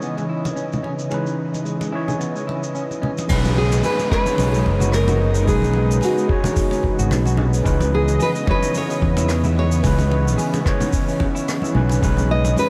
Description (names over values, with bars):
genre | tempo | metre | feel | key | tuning
sunset chillout | 110 BPM | 4/4 | swing 56% on 16ths | B major | A4 = 440 Hz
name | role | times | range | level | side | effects
overdriven tine electric piano | accompaniment | 0.0-12.7 s | E3 to D#5 | -28 LUFS | equal | analog delay
lush unison pad | sustained chords | 0.0-12.7 s | C#3 to D#5 | -29 LUFS | equal | chorus
electric guitar at the edge of break-up | arpeggios | 0.0-12.7 s | G#3 to G#4 | -33 LUFS | equal | vintage 12-bit sampler grit, analog delay
vintage brush drum kit | drums | 0.0-12.7 s | crash cymbal, hi-hat, rim click, shaker | -35 LUFS | equal | low-pass filter on cymbals, low-pass filter on hats, low-pass filter on snare, low-pass filter on perc, low-pass filter on room
congas | percussion | 0.2-12.7 s | none | -30 LUFS | equal | none
fingered electric bass | bass | 3.3-12.5 s | F#1 to E2 | -21 LUFS | equal | none
electronic kick drum | drums | 3.3-12.1 s | none | -24 LUFS | equal | none
downlifter | sound effects | 3.3-7.7 s | none | -35 LUFS | equal | none
nylon-string guitar | melody | 3.6-12.7 s | F#4 to D#5 | -26 LUFS | equal | analog delay
room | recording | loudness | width
moderate huge ambient reverb, RT60 8.4 s | dreamy mix soaked in reverb | -19 LUFS | mono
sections
0.0-3.3 A section; 3.3-12.7 B section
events
none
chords
0.0 C#m9; 3.3 B69; 7.7 C#m9; 12.0 B69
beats
0.02 0.57 | 1.11 1.66 2.21 2.75 | 3.30 3.84 4.39 4.93 | 5.48 6.02 6.57 7.12 | 7.66 8.21 8.75 9.30 | 9.84 10.39 10.93 11.48 | 12.02 12.57